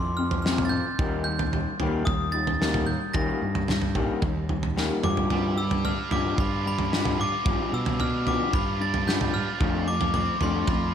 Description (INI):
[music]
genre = indie rock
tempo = 111 BPM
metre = 4/4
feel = straight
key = G mixolydian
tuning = A4 = 440 Hz
[part]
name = glockenspiel with brass mallets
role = melody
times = 0.0-10.9 s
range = B5 to Bb6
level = -30 LUFS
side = left 1 dB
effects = none
[part]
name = electric guitar through a small old amp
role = riff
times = 0.0-10.9 s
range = F2 to D4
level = -29 LUFS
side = left 5 dB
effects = spring reverb
[part]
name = fuzz fingered electric bass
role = bass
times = 0.0-10.9 s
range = Eb2 to B2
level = -29 LUFS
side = right 1 dB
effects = overdrive
[part]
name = loose indie drum kit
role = drums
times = 0.3-10.8 s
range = kick drum, snare drum, toms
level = -28 LUFS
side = right 1 dB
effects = none
[part]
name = high-gain distorted guitar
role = riff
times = 5.3-10.9 s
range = F3 to D5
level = -33 LUFS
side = right 8 dB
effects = distortion, wide subtle chorus, analog delay
[sound]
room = moderate lush hall reverb, RT60 2.4 s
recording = dreamy mix soaked in reverb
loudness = -23 LUFS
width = side -8 dB against mid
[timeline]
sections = 0.0-10.9 A section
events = drum fill 4.8-5.3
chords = 0.0 Fmaj7(no3); 1.0 Eb; 5.0 G7; 9.6 Dm7/F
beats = 0.45 | 0.99 1.53 2.07 2.61 | 3.15 3.69 4.23 4.76 | 5.30 5.84 6.38 6.92 | 7.46 8.00 8.53 9.07 | 9.61 10.14 10.68